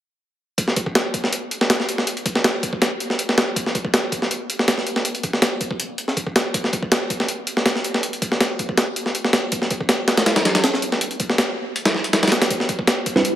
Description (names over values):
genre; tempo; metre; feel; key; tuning
drum and bass, jungle; 161 BPM; 4/4; straight; A minor; A4 = 444 Hz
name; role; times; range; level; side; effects
breakbeat sampler-style drum kit; drums; 0.6-13.3 s; hi-hat, kick drum, snare drum; -18 LUFS; equal; high-pass filter on kick, high-pass filter on hats, high-pass filter on snare
bell-like tine electric piano; stabs; 13.2 s; G3 to B4; -16 LUFS; right 2 dB; none
room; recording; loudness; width
moderate plate reverb, RT60 2.2 s; heavily compressed radio sound; -18 LUFS; side -12 dB against mid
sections
0.6-13.4 A section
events
none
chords
none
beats
| 0.58 0.95 1.32 1.70 | 2.07 2.44 2.82 3.19 | 3.56 3.93 4.31 4.68 | 5.05 5.42 5.80 6.17 | 6.54 6.92 7.29 7.66 | 8.03 8.41 8.78 9.15 | 9.52 9.90 10.27 10.64 | 11.01 11.39 11.76 12.13 | 12.51 12.88 13.25